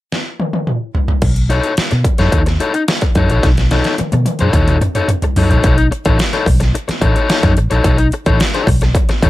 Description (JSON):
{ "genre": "funk", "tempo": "109 BPM", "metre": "4/4", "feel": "straight", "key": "B mixolydian", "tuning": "A4 = 440 Hz", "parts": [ { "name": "dubstep drum kit", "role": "drums", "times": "0.1-9.3 s", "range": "crash cymbal, hi-hat, kick drum, snare drum, toms", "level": "-15 LUFS", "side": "equal", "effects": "overdrive" }, { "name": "vintage muted fingered electric bass", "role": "bass", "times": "1.2-9.3 s", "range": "A1 to B2", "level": "-15 LUFS", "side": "equal", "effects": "none" }, { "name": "crunchy overdriven guitar", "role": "accompaniment", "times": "1.5-9.3 s", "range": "D#4 to C#5", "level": "-17 LUFS", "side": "left 4 dB", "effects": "none" } ], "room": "little or no reverb", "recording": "none", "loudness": "-12 LUFS", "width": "side -16 dB against mid", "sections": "0.0-1.2 A section; 1.2-5.6 B section; 5.6-9.3 C section", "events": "drum fill 0.1-1.2, 3.4-5.6", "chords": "0.0 N.C.; 1.2 B9" }